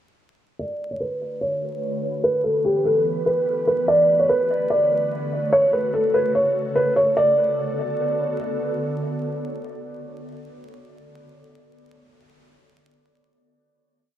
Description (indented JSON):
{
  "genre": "hip hop, trap",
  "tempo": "146 BPM",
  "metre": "4/4",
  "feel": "half-time",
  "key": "B minor",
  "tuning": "A4 = 441 Hz",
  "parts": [
    { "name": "felt-muted upright piano", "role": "melody", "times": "0.6-8.4 s", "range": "G4 to D5", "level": "-20 LUFS", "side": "equal", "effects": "low-pass filter, dub echo" },
    { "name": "ethereal airy pad", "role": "sustained chords", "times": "1.2-10.3 s", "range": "C#3 to B4", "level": "-29 LUFS", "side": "right 1 dB", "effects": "ensemble chorus, built-in reverb, low-pass filter" }
  ],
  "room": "wet spring reverb, RT60 1.3 s, small room ambience",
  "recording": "echo-heavy mix, vinyl crackle",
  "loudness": "-19 LUFS",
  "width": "side -11 dB against mid",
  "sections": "0.6-7.2 breakdown; 7.2-10.5 final chord",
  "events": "filter sweep 0.6-7.2",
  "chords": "0.6 Bm7; 2.2 Em; 3.9 Bm7; 5.5 F#m; 7.2 Bm7"
}